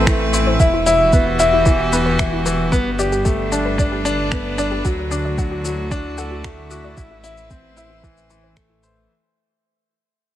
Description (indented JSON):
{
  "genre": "piano and strings electronica",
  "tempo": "113 BPM",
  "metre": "4/4",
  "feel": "straight",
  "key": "unclear",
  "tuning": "A4 = 438 Hz",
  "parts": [
    { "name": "warm string quartet", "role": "sustained chords", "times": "0.0-9.1 s", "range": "D3 to C5", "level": "-26 LUFS", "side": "right 1 dB", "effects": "sidechain pumping" },
    { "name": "clear concert grand piano", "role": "riff", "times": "0.0-9.1 s", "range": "E3 to C5", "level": "-19 LUFS", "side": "left 1 dB", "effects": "tape echo" },
    { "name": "dark detuned saw bass", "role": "bass", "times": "0.0-9.1 s", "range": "E1 to D2", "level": "-24 LUFS", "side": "right 1 dB", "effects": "sidechain pumping" },
    { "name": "soft round pluck", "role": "arpeggios", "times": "0.1-8.7 s", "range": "E4 to D6", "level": "-27 LUFS", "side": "left 1 dB", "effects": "chorus, sidechain pumping, tape echo" },
    { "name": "electronic finger snaps and shaker", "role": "drums", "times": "0.1-8.9 s", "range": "none", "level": "-26 LUFS", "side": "left 2 dB", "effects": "none" },
    { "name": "electronic kick drum", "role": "drums", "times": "0.1-8.7 s", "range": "none", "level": "-18 LUFS", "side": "right 1 dB", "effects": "none" }
  ],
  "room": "light reverb, digital ambience",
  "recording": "none",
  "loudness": "-15 LUFS",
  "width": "side -12 dB against mid",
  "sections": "0.0-9.1 A section",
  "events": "drop 0.0-9.1; fade-out 0.6-9.1",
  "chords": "0.0 Am; 0.6 Em; 2.7 Gadd9; 4.8 D; 7.0 Am"
}